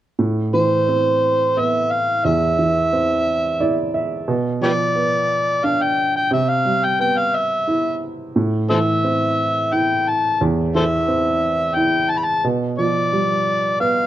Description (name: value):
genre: acoustic folk-pop ballad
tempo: 88 BPM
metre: 3/4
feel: straight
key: A minor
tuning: A4 = 436 Hz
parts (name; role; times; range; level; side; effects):
- warm upright piano; accompaniment; 0.2-14.1 s; E2 to E5; -20 LUFS; right 2 dB; none
- overdriven harmonica; melody; 0.5-14.1 s; G4 to B5; -18 LUFS; equal; none
room: light reverb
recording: dark, warm production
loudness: -16 LUFS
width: side -13 dB against mid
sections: 0.2-14.1 A section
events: none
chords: 0.2 Amadd9; 4.3 Bdim; 6.3 Cmaj7; 8.4 Am; 12.4 G7/B